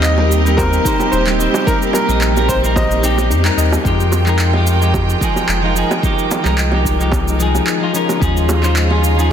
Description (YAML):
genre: sunset chillout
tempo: 110 BPM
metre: 4/4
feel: swing 54% on 16ths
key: F minor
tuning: A4 = 440 Hz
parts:
  - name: bright concert grand piano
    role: melody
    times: 0.0-3.3 s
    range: Bb4 to Eb5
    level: -20 LUFS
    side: left 1 dB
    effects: tape echo, shimmer reverb
  - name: clean electric guitar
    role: accompaniment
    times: 0.0-9.3 s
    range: F3 to Eb5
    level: -19 LUFS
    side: moving between left 6 dB and right 4 dB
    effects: auto-pan, digital delay, shimmer reverb
  - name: clear studio string section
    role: sustained chords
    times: 0.0-9.3 s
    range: C3 to G5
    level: -21 LUFS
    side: right 2 dB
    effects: vintage 12-bit sampler grit, shimmer reverb
  - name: warm sub bass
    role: bass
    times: 0.0-9.3 s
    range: Eb1 to F2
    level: -16 LUFS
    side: equal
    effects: none
  - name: electronic handclaps and shaker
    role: drums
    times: 0.0-9.3 s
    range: none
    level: -23 LUFS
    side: right 1 dB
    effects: none
  - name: wind-like tuned noise texture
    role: texture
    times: 0.0-3.9 s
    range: G3 to G6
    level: -29 LUFS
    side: right 1 dB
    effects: none
  - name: bongos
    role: percussion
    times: 0.2-9.0 s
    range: none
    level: -24 LUFS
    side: right 2 dB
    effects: none
  - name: soft round pluck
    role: arpeggios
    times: 0.6-3.7 s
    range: Eb4 to Eb5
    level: -27 LUFS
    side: left 3 dB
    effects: chorus, digital delay, shimmer reverb
  - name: electronic kick drum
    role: drums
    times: 0.6-8.3 s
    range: none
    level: -20 LUFS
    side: equal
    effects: none
room: moderate lush hall reverb, RT60 1.7 s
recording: dense, heavily limited modern master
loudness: -12 LUFS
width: side -9 dB against mid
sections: 0.0-3.9 A section; 3.9-9.3 B section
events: band accent 3.4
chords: 0.0 Cm7/Eb; 3.9 Fm9; 7.9 Eb9sus4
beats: 0.03 0.58 1.12 | 1.67 2.21 2.76 3.31 | 3.85 4.40 4.94 5.49 | 6.03 6.58 7.12 7.67 | 8.21 8.76 9.30